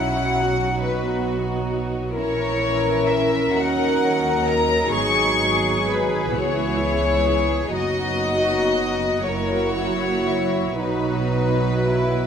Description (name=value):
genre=classical, slow romantic movement for string orchestra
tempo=37-45 BPM (dotted quarters)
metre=6/8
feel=rubato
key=B major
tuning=A4 = 441 Hz
part: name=clear studio violin section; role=melody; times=0.0-12.3 s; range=B4 to C#6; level=-23 LUFS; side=left 5 dB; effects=none
part: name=warm chamber violin section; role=second line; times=0.0-12.3 s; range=D#4 to A#4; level=-26 LUFS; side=left 1 dB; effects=none
part: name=dark studio viola section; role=accompaniment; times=0.0-12.3 s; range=E3 to C#4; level=-26 LUFS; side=right 3 dB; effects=none
part: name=dark chamber double bass section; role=bass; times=0.0-12.3 s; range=F#1 to D#2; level=-27 LUFS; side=right 4 dB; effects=none
part: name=warm chamber cello section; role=bass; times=0.0-12.3 s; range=D#4 to A#4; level=-26 LUFS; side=equal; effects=none
room=moderate concert hall reverb, RT60 2.1 s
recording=none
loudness=-19 LUFS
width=side -7 dB against mid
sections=0.0-12.3 A section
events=none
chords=0.0 B; 2.2 A#dim; 3.5 D#m7; 4.9 G#m7; 6.3 C#m7; 7.7 B/F#; 9.2 F#7; 10.8 B